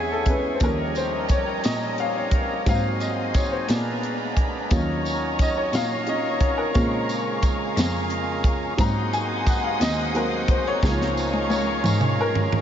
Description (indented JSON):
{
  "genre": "slow gospel",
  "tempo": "59 BPM (dotted quarters)",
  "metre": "6/8",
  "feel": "straight",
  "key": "unclear",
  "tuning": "A4 = 440 Hz",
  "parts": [
    { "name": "clear upright piano", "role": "accompaniment", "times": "0.0-12.6 s", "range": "F3 to Bb5", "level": "-26 LUFS", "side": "left 2 dB", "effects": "none" },
    { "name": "tonewheel organ", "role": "sustained chords", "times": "0.0-12.6 s", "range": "Db3 to Db5", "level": "-29 LUFS", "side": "right 1 dB", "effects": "slow rotary speaker, overdrive" },
    { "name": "warm studio string section", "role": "sustained chords", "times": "0.0-12.6 s", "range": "Fb4 to Eb6", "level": "-32 LUFS", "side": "equal", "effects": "none" },
    { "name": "warm cello", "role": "bass", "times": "0.0-12.6 s", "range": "Db2 to Bb2", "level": "-29 LUFS", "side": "equal", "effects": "none" },
    { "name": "crisp fusion drum kit", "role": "drums", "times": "0.3-12.6 s", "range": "hi-hat, kick drum, snare drum, toms", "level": "-25 LUFS", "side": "equal", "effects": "none" },
    { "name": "tambourine", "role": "percussion", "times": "0.6-12.2 s", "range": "none", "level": "-40 LUFS", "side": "right 6 dB", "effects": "none" }
  ],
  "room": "wet huge ambient reverb, RT60 7.8 s",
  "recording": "dreamy mix soaked in reverb, nothing above 7.6 kHz",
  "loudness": "-20 LUFS",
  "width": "side -9 dB against mid",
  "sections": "0.0-12.6 A section",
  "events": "upright piano solo 0.0-12.6; drum fill 10.8-12.6",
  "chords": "0.0 Dbm11; 0.6 Eb7; 2.7 Ab7; 3.7 Bb7b9; 4.7 Ebm7; 6.7 Bbm7; 8.8 Ab7; 10.8 Db6"
}